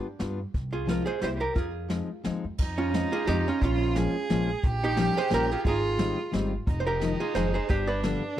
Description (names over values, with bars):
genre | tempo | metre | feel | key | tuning
musette waltz | 177 BPM | 3/4 | swing 54% on 8ths | F minor | A4 = 439 Hz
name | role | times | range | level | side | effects
archtop guitar, miked and amplified | melody | 0.0-8.4 s | Db4 to D5 | -29 LUFS | right 3 dB | slapback echo
fingerpicked steel-string acoustic guitar | accompaniment | 0.0-8.4 s | D3 to F4 | -29 LUFS | left 4 dB | none
upright bass | bass | 0.2-8.1 s | F1 to G2 | -31 LUFS | equal | none
jazz brush drum kit | drums | 0.2-8.1 s | crash cymbal, hi-hat, kick drum, snare drum | -30 LUFS | equal | none
rich violin | second line | 2.6-8.4 s | D4 to Ab4 | -32 LUFS | right 3 dB | none
room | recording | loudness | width
small room ambience | dry, close 1970s-style studio recording | -25 LUFS | side -11 dB against mid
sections
0.0-2.6 A section; 2.6-8.4 A section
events
none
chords
0.0 G7; 0.5 Fm/C; 1.2 C7; 1.6 Fm7; 3.6 Bbm7; 4.6 Gm7b5/Bb; 5.6 Abmaj7; 6.7 Fm7; 7.7 G7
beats
0.20 | 0.54 0.88 1.22 | 1.56 1.90 2.25 | 2.60 2.94 3.28 | 3.62 3.96 4.30 | 4.63 4.97 5.31 | 5.65 5.99 6.33 | 6.67 7.02 7.36 | 7.70 8.04 8.38